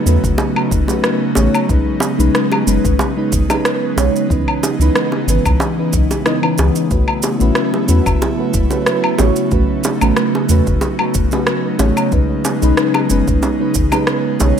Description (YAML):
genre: sunset chillout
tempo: 92 BPM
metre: 4/4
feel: swing 54% on 16ths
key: unclear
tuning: A4 = 441 Hz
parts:
  - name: mellow FM electric piano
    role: accompaniment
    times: 0.0-14.6 s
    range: E3 to D#5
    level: -18 LUFS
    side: moving between left 5 dB and right 6 dB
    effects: chorus, phaser, auto-pan, digital delay
  - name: airy breathy pad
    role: sustained chords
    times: 0.0-14.6 s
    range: C#3 to E4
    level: -20 LUFS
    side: equal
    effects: chorus
  - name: warm sub bass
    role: bass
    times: 0.1-14.5 s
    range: F#1 to E2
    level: -15 LUFS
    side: equal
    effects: tube saturation
  - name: electronic shaker, woodblock and rim click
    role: drums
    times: 0.1-14.5 s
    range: none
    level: -20 LUFS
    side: left 1 dB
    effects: overdrive
  - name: electronic kick drum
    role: drums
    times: 0.2-13.9 s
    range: none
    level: -20 LUFS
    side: equal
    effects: overdrive
  - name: bongos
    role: percussion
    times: 0.4-14.5 s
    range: none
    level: -22 LUFS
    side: right 2 dB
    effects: none
room: light reverb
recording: none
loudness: -13 LUFS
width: side -8 dB against mid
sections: 0.0-14.6 A section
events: none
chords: 0.0 A69; 1.7 B69; 4.3 C#m9; 6.9 A69; 12.1 B69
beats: 0.39 1.04 | 1.69 2.35 3.00 3.65 | 4.30 4.95 5.61 6.26 | 6.91 7.56 8.21 8.87 | 9.52 10.17 10.82 11.47 | 12.13 12.78 13.43 14.08